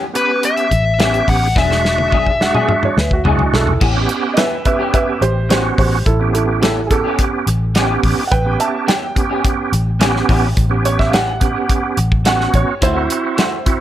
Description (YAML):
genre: straight-eighth soul blues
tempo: 106 BPM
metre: 4/4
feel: straight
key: A mixolydian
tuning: A4 = 441 Hz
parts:
  - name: electric guitar through a small old amp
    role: stabs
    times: 0.0-13.6 s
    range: E3 to G#4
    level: -24 LUFS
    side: left 4 dB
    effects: ensemble chorus, tape echo
  - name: bright tonewheel organ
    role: accompaniment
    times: 0.1-13.8 s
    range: G#3 to G4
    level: -20 LUFS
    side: right 5 dB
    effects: chorus vibrato, fast rotary speaker
  - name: smooth overdriven lead guitar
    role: melody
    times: 0.2-3.2 s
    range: B4 to F#5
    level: -17 LUFS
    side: left 4 dB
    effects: none
  - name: warm soul drum kit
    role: drums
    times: 0.2-13.8 s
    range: crash cymbal, hi-hat, kick drum, snare drum, toms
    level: -18 LUFS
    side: equal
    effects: none
  - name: vintage muted fingered electric bass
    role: bass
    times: 0.7-13.1 s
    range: E1 to D2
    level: -18 LUFS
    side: equal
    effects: none
  - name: warm upright piano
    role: second line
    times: 2.4-13.8 s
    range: E4 to A5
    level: -20 LUFS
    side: right 3 dB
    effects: none
room: small room ambience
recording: none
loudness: -13 LUFS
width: side -12 dB against mid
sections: 0.0-3.8 A section; 3.8-13.8 B section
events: drum fill 1.6-3.8; upright piano solo 3.8-13.8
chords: 0.0 A9; 1.6 E9; 3.8 A9; 12.8 D9